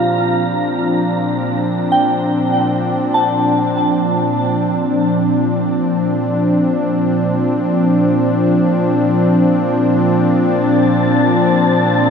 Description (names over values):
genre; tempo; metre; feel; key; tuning
ambient; free time; none; none; Bb major; A4 = 441 Hz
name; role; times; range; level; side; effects
warm analog pad; sustained chords; 0.0-12.1 s; Bb2 to D4; -14 LUFS; equal; chorus
soft synth bell; arpeggios; 0.0-6.6 s; F4 to A5; -20 LUFS; right 1 dB; chorus, diffuse ambient delay
wind-like tuned noise texture; texture; 0.0-4.8, 10.3-12.1 s; A5 to Bb5; -24 LUFS; left 2 dB; built-in reverb
room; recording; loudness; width
wet huge ambient reverb, RT60 7.7 s; none; -13 LUFS; side -6 dB against mid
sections
0.0-4.8 A section; 4.8-12.1 B section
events
fade-out on synth texture 0.0-4.8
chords
0.0 Bb6; 4.8 Bb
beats
free time